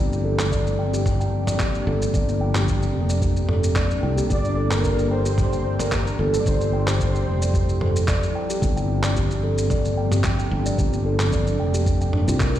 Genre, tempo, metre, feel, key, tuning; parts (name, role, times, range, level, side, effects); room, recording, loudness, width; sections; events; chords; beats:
organic downtempo; 111 BPM; 4/4; swing 54% on 16ths; A4 = 439 Hz
ethereal airy pad; sustained chords; 0.0-12.6 s; E3 to G4; -30 LUFS; left 1 dB; ensemble chorus, built-in reverb, sidechain pumping
steel tongue drum; arpeggios; 0.0-12.5 s; D4 to G5; -27 LUFS; right 1 dB; ping-pong delay
sustaining fretless electric bass; bass; 0.0-12.6 s; F1 to C2; -23 LUFS; equal; sidechain pumping
dusty soul sampler-style drum kit; drums; 0.1-12.6 s; handclaps, shaker, toms; -28 LUFS; right 1 dB
electronic kick drum; drums; 0.5-12.5 s; -24 LUFS; equal
breathy flute-like synth lead; melody; 4.3-8.1 s; A4 to D5; -28 LUFS; right 1 dB; ensemble chorus, ping-pong delay
light reverb; played on a big sound system in a bare room, large studio reverb; -19 LUFS; side -12 dB against mid
0.0-12.6 A section
0.0 C9sus4/G; 2.1 Bb69; 4.3 Gm69; 6.5 Fmaj7sus2; 8.6 C9sus4/G; 10.8 Bb69
0.51 1.05 1.59 | 2.14 2.68 3.22 3.76 | 4.30 4.84 5.38 5.92 | 6.46 7.00 7.54 8.08 | 8.62 9.16 9.70 10.24 | 10.78 11.32 11.87 12.41